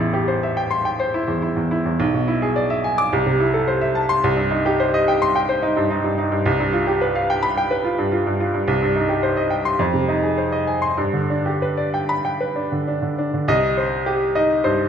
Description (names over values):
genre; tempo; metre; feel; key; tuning
classical, virtuoso piano study; 94-110 BPM; 4/4; rubato; C minor from 4.2 s; A4 = 440 Hz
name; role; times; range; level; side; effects
bright baby grand piano; solo; 0.0-14.9 s; A1 to D6; -18 LUFS; equal; none
room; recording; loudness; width
moderate recital hall reverb, RT60 1.7 s; minimal, uncompressed stereo recording; -18 LUFS; side -8 dB against mid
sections
0.0-13.5 A section; 13.5-14.9 B section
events
none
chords
0.0 Am7; 2.0 E7/B; 3.1 Am/C; 4.2 Cm; 6.5 G7/C; 8.7 Cm; 9.8 Fm7; 11.0 G; 13.5 Cm